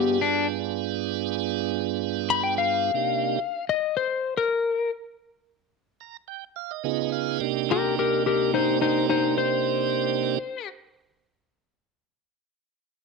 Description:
blues; 108 BPM; 4/4; straight; A4 = 438 Hz
clean lap steel guitar; melody; 0.0-10.7 s; B3 to B5; -23 LUFS; left 7 dB
tonewheel organ; accompaniment; 0.0-10.4 s; G2 to Bb5; -26 LUFS; right 16 dB; slow rotary speaker, overdrive
moderate spring reverb, RT60 1.1 s; 1960s-style stereo with parts hard left and right; -22 LUFS; side -3 dB against mid
0.0-7.4 A section; 7.4-9.6 B section
stop 3.0-6.8; tonewheel organ fill 5.7-7.4
0.0 G7b9; 3.0 Cm9; 6.8 Db7; 7.4 Cm9
0.17 | 0.73 1.29 1.84 2.40 | 2.96 3.51 4.07 4.62 | 5.18 5.74 6.29 6.85 | 7.40 7.96 8.51 9.07

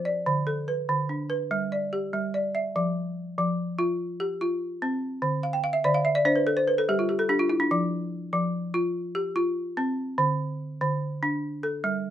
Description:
west african traditional; 97 BPM (dotted quarters); 12/8; straight; F lydian; A4 = 440 Hz
balafon; solo; 0.0-12.1 s; D3 to G5; -24 LUFS; equal
light reverb; minimal, uncompressed stereo recording; -24 LUFS; side -11 dB against mid
0.0-2.8 A section; 2.8-12.1 B section
balafon fill 5.4-7.7
0.3 D5; 1.5 G; 2.8 F5; 5.2 N.C.; 6.5 G5; 7.7 F5; 10.2 N.C.; 11.4 G5
| 0.27 0.89 1.51 2.13 | 2.75 3.38 4.00 4.62 | 5.24 5.86 6.47 7.09 | 7.71 8.33 8.95 9.57 | 10.19 10.81 11.43 12.05

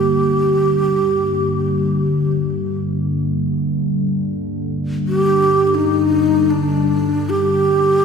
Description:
world meditative, free-time meditation music; free time; G hirajoshi; A4 = 438 Hz
breathy mellow xiao; melody; 0.0-8.0 s; D4 to G4; -16 LUFS; equal; analog delay
deep dark ambient pad; drone; 0.0-8.0 s; G2 to D3; -19 LUFS; left 1 dB; chorus, built-in reverb
bronze singing bowl; texture; 0.0-3.3 s; Bb3; -29 LUFS; right 4 dB
wet lush hall reverb, RT60 3.1 s; dreamy mix soaked in reverb; -15 LUFS; side -6 dB against mid
0.0-8.0 A section
free time

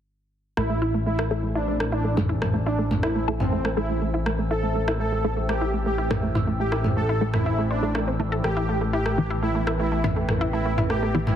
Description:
melodic techno; 122 BPM; 4/4; straight; A minor; A4 = 440 Hz
soft supersaw; melody; 0.6-11.4 s; C4 to A4; -28 LUFS; right 1 dB; low-pass filter, ping-pong delay
dark analog pad; sustained chords; 1.5-11.4 s; B4 to E6; -35 LUFS; right 1 dB; chorus, phaser
analog pluck; arpeggios; 0.6-11.4 s; A3 to C5; -29 LUFS; right 1 dB; chorus, cassette tape, tape echo
fat analog bass; bass; 0.6-11.4 s; A1; -27 LUFS; equal
overtone-sweeping drone; drone; 1.0-11.4 s; A2 to E3; -34 LUFS; left 2 dB; chorus, built-in reverb
punchy analog drum machine; drums; 0.6-11.4 s; rim click, toms; -27 LUFS; equal
filtered dub chord stab; stabs; 1.3-11.4 s; E3 to A4; -31 LUFS; left 1 dB
light reverb; heavily compressed radio sound, multiband compression; -22 LUFS; side -9 dB against mid
0.6-11.4 A section
filter sweep on synth arpeggio sound 0.6-11.4; filter sweep on supersaw synth 0.6-11.4
0.6 Am; 8.4 Em/A
| 0.57 1.06 1.56 2.05 | 2.54 3.03 3.52 4.02 | 4.51 5.00 5.49 5.98 | 6.47 6.97 7.46 7.95 | 8.44 8.93 9.43 9.92 | 10.41 10.90

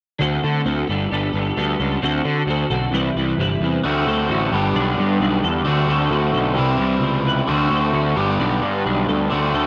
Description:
rock; 132 BPM; 4/4; straight; D mixolydian; A4 = 441 Hz
twelve-string electric guitar; riff; 0.2-9.7 s; C3 to B4; -25 LUFS; equal; analog chorus
fuzz picked electric bass; bass; 0.2-9.7 s; G1 to D3; -24 LUFS; equal; overdrive
crunchy overdriven guitar; riff; 3.8-9.7 s; G2 to G4; -23 LUFS; equal; subtle chorus, slapback echo
moderate echo chamber reverb, RT60 2.0 s; -20 LUFS; mono
0.2-3.8 A section; 3.8-9.7 B section
0.2 D7; 0.9 Gadd9; 2.0 D7; 2.9 Cmaj7; 3.8 D7; 4.5 Gadd9; 5.7 D7; 6.6 Cmaj7; 7.5 D7; 8.2 Gadd9
| 0.22 0.67 1.12 1.57 | 2.03 2.48 2.94 3.39 | 3.84 4.30 4.75 5.21 | 5.66 6.12 6.57 7.03 | 7.49 7.94 8.40 8.86 | 9.31

